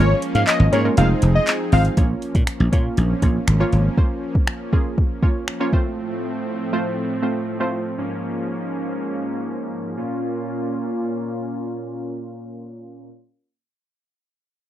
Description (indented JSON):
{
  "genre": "dance-pop",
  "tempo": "120 BPM",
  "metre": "4/4",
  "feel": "straight",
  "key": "Bb minor",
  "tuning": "A4 = 440 Hz",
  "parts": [
    { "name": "wide unison lead", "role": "melody", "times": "0.0-1.8 s", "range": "Db5 to F5", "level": "-21 LUFS", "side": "left 2 dB", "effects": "sidechain pumping, slapback echo" },
    { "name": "glassy wavetable pluck", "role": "accompaniment", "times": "0.0-7.8 s", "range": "Ab3 to Db5", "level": "-24 LUFS", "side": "right 2 dB", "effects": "chorus, sidechain pumping, low-pass filter" },
    { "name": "soft supersaw", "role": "sustained chords", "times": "0.0-13.1 s", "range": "Ab2 to Ab4", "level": "-26 LUFS", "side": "equal", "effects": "sidechain pumping, low-pass filter" },
    { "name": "dry thumbed slap bass", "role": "bass", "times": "0.0-3.9 s", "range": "F1 to Bb2", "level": "-17 LUFS", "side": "equal", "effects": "sidechain pumping" },
    { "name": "smooth R&B drum kit", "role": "drums", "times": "0.2-5.8 s", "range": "finger snaps, handclaps, hi-hat, kick drum", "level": "-19 LUFS", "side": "equal", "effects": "none" }
  ],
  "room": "little or no reverb",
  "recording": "dry, close 1970s-style studio recording",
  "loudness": "-18 LUFS",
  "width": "side -12 dB against mid",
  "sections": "0.0-2.0 A section; 2.0-10.0 B section; 10.0-14.0 C section",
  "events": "break 0.0-2.0; drop 0.0-2.0; filter sweep 2.0-10.0",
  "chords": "0.0 Db6/Ab; 1.0 Fm7; 2.0 Bbm; 5.7 F/A; 8.0 Db6/Ab; 10.0 Bbm"
}